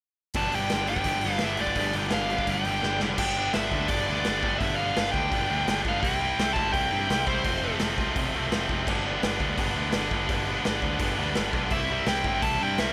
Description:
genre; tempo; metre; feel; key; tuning
punk rock; 169 BPM; 4/4; straight; G mixolydian; A4 = 441 Hz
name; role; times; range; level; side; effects
crunchy overdriven guitar; riff; 0.3-3.2 s; G2 to G3; -36 LUFS; equal; none
growling picked electric bass; bass; 0.3-12.9 s; F1 to G2; -36 LUFS; equal; overdrive
raw garage drum kit; drums; 0.3-12.9 s; crash cymbal, hi-hat, kick drum, snare drum; -33 LUFS; equal; none
dark smooth lead guitar; melody; 0.4-7.8, 11.7-12.9 s; C5 to A5; -31 LUFS; equal; overdrive, digital delay
tight distorted guitar; riff; 0.4-12.9 s; F2 to G4; -30 LUFS; equal; distortion
room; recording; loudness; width
little or no reverb; none; -26 LUFS; mono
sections
0.3-3.2 A section; 3.2-12.9 B section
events
drum fill 2.8-3.2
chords
0.3 G; 6.0 C; 7.5 F; 8.9 G; 11.7 C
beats
| 0.35 0.70 1.06 1.42 | 1.77 2.13 2.48 2.84 | 3.19 3.55 3.90 4.26 | 4.61 4.97 5.32 5.68 | 6.03 6.39 6.74 7.10 | 7.45 7.81 8.16 8.52 | 8.88 9.23 9.59 9.95 | 10.30 10.66 11.01 11.37 | 11.72 12.08 12.44 12.79

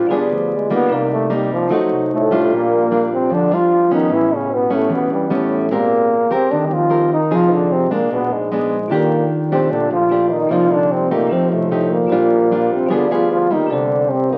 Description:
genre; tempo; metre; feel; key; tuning
bossa nova; 150 BPM; 4/4; straight; Bb major; A4 = 440 Hz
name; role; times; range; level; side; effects
bell-like tine electric piano; accompaniment; 0.0-2.5, 8.9-14.4 s; Eb4 to D5; -25 LUFS; equal; none
nylon-string guitar; accompaniment; 0.0-14.4 s; A2 to Bb4; -21 LUFS; equal; none
upright bass; bass; 0.0-14.4 s; F1 to G2; -36 LUFS; equal; none
mellow trombone; melody; 0.1-14.4 s; F3 to G4; -20 LUFS; equal; none
mellow trombone; second line; 2.1-14.4 s; G2 to G3; -25 LUFS; equal; none
room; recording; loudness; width
wet large studio reverb, RT60 0.9 s; very old 78 rpm record, vinyl crackle; -17 LUFS; mono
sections
0.0-2.5 A section; 2.5-14.4 B section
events
trombone solo 0.0-2.5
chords
0.1 G7b9; 0.9 Cm7; 1.7 F7b9; 2.5 Bb6; 4.1 A9; 5.7 Abmaj9; 7.3 Fm7; 8.1 Bb7b9; 8.9 Ebmaj9#11; 10.5 Cm11; 11.3 F9; 12.1 Bb6; 12.9 G7b9; 13.7 C7(no3)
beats
0.10 0.50 | 0.90 1.30 1.70 2.10 | 2.50 2.90 3.30 3.71 | 4.11 4.51 4.91 5.31 | 5.71 6.11 6.51 6.91 | 7.31 7.71 8.11 8.51 | 8.91 9.30 9.70 10.10 | 10.50 10.90 11.30 11.70 | 12.10 12.50 12.90 13.30 | 13.70 14.10

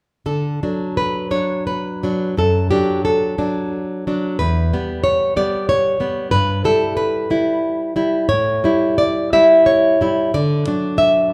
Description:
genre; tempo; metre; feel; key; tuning
romantic piece for solo classical guitar; 81-94 BPM; 3/4; rubato; D major; A4 = 440 Hz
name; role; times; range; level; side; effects
nylon-string guitar; solo; 0.3-11.3 s; E2 to E5; -18 LUFS; equal; none
room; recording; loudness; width
moderate large studio reverb, RT60 1.4 s; band playing live in one room; -18 LUFS; mono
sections
0.3-11.3 A section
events
none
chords
0.3 D; 2.4 D/F#; 4.4 Em; 6.3 Em/G; 8.3 A7; 10.3 D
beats
| 0.26 0.98 1.68 | 2.38 3.06 3.74 | 4.40 5.05 5.69 | 6.34 6.99 7.64 | 8.31 9.00 9.67 | 10.34 11.00

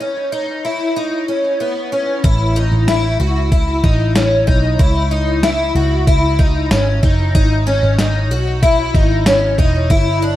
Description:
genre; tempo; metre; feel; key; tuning
dream pop; 94 BPM; 4/4; straight; A lydian; A4 = 440 Hz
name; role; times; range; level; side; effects
picked twelve-string acoustic guitar; arpeggios; 0.0-10.4 s; B3 to F#4; -17 LUFS; left 1 dB; ensemble chorus, tape echo, shimmer reverb
vintage muted picked electric bass; bass; 2.2-10.4 s; E1 to C#2; -16 LUFS; equal; none
detuned 8-bit digital drum machine; drums; 2.2-10.0 s; hi-hat, kick drum, snare drum, tambourine; -15 LUFS; equal; none
room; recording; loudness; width
moderate recital hall reverb, RT60 1.6 s, digital ambience; dark, warm production; -13 LUFS; side -14 dB against mid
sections
0.0-2.2 A section; 2.2-10.4 B section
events
break 0.0-2.2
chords
0.0 B; 2.2 A6; 4.8 C#m; 7.3 G#m7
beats
0.33 0.96 1.60 | 2.24 2.88 3.52 4.16 | 4.79 5.43 6.07 6.71 | 7.35 7.99 8.62 9.26 | 9.90

